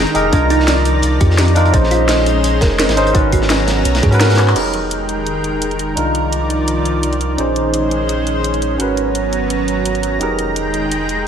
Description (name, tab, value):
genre	liquid drum and bass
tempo	170 BPM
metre	4/4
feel	swing 54% on 16ths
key	F minor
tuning	A4 = 440 Hz
part	barky tine electric piano	accompaniment	0.0-11.3 s	Db4 to C5	-18 LUFS	right 1 dB	wide subtle chorus, tape echo
part	lush unison pad	sustained chords	0.0-11.3 s	Eb3 to Bb5	-20 LUFS	equal	chorus, sidechain pumping
part	thumb-piano-like synth pluck	arpeggios	0.0-4.4 s	D4 to Eb5	-22 LUFS	right 2 dB	chorus, ping-pong delay
part	warm sub bass	bass	0.0-11.3 s	F1 to Ab2	-18 LUFS	equal	tube saturation
part	drum and bass drum kit	drums	0.1-11.2 s	crash cymbal, handclaps, hi-hat, snare drum	-21 LUFS	equal	none
part	crunchy breakbeat drum kit	drums	0.2-4.6 s	hi-hat, snare drum	-25 LUFS	equal	high-pass filter on hats, high-pass filter on snare, high-pass filter on room
part	electronic kick drum	drums	0.3-4.1 s	none	-15 LUFS	equal	none
room	moderate plate reverb, RT60 2.0 s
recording	dreamy mix soaked in reverb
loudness	-13 LUFS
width	side -8 dB against mid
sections	0.0-4.6 A section; 4.6-11.3 B section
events	filter sweep on tine electric piano 0.0-4.6; drum fill 4.4; band accent 4.5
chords	0.3 Cm11; 1.7 Bbm11; 3.1 Abm11; 4.6 Fm11; 6.0 Cm11; 7.4 Bbm11; 8.8 Abm11; 10.2 Fm11